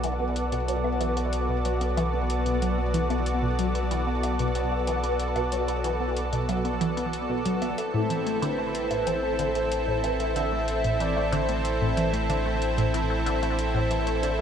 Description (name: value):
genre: ambient, sequencer-driven space music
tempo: 93 BPM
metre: 4/4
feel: straight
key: A dorian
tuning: A4 = 439 Hz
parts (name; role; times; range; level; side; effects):
- lush unison pad; sustained chords; 0.0-14.4 s; B3 to D5; -28 LUFS; equal; chorus
- resonant blip pluck; riff; 0.0-14.4 s; A2 to B3; -29 LUFS; equal; phaser, wide subtle chorus, tape echo
- warm sub bass; bass; 0.0-14.4 s; A1 to B1; -30 LUFS; equal; none
- electronic hi-hat and woodblock; percussion; 0.0-14.4 s; none; -40 LUFS; left 4 dB; tape echo
- pulse-width lead; melody; 7.8-12.6 s; A4 to E5; -31 LUFS; equal; chorus, tape echo
room: wet huge ambient reverb, RT60 8.1 s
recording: none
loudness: -24 LUFS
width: side -8 dB against mid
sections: 0.0-14.4 A section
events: none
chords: 0.0 Bm7; 7.8 Am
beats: | 0.04 0.68 1.33 1.97 | 2.62 3.26 3.91 4.55 | 5.20 5.84 6.49 7.13 | 7.78 8.42 9.07 9.71 | 10.36 11.00 11.65 12.29 | 12.94 13.58 14.23